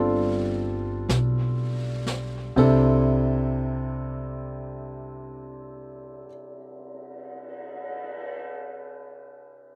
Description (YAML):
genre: jazz ballad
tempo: 39 BPM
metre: 4/4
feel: swing 66% on 8ths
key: C major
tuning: A4 = 440 Hz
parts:
  - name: clear concert grand piano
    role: accompaniment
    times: 0.0-9.8 s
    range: C3 to A4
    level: -28 LUFS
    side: equal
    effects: slapback echo
  - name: upright bass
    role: bass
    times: 0.0-6.2 s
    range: G1 to C2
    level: -29 LUFS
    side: equal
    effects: none
  - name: jazz brush drum kit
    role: drums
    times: 1.1-8.4 s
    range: brushed snare drum, cymbal swell, hi-hat, kick drum, ride cymbal, snare drum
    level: -38 LUFS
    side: equal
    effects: none
room: little or no reverb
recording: recorded outdoors, with no room sound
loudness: -25 LUFS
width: mono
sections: 0.0-2.6 A section; 2.6-8.7 B section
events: slowing down 0.0-2.6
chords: 0.0 G9sus4; 2.6 C69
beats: 1.09 | 2.56 4.09 5.61 7.14